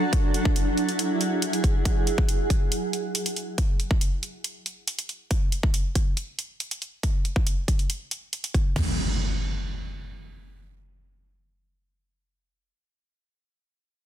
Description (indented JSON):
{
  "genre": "heavy wobble dubstep",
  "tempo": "139 BPM",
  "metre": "4/4",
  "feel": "half-time",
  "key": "unclear",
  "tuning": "A4 = 439 Hz",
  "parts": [
    { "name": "granular cloud pad", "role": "texture", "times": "0.0-1.9 s", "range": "F#3 to F#5", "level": "-26 LUFS", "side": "right 2 dB", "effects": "built-in reverb, sidechain pumping" },
    { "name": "big-room dance drum kit", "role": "drums", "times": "0.1-8.9 s", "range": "crash cymbal, kick drum, toms", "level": "-23 LUFS", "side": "equal", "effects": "overdrive, studio reverb" },
    { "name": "electronic hi-hat", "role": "drums", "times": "0.1-8.6 s", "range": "none", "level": "-30 LUFS", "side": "right 1 dB", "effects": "overdrive, studio reverb" },
    { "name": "impact", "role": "sound effects", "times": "8.8-12.7 s", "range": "none", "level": "-29 LUFS", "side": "equal", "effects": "none" }
  ],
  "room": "digital ambience",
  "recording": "dense, heavily limited modern master",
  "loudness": "-23 LUFS",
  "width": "side -11 dB against mid",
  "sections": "0.0-8.8 A section; 8.8-12.2 B section",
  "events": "none",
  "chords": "0.1 Eadd9/F#; 1.9 N.C.",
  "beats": "| 0.13 0.56 0.99 1.42 | 1.85 2.29 2.72 3.15 | 3.58 4.01 4.44 4.88 | 5.31 5.74 6.17 6.60 | 7.03 7.46 7.90 8.33 | 8.76 9.19 9.62 10.05 | 10.49 10.92 11.35 11.78"
}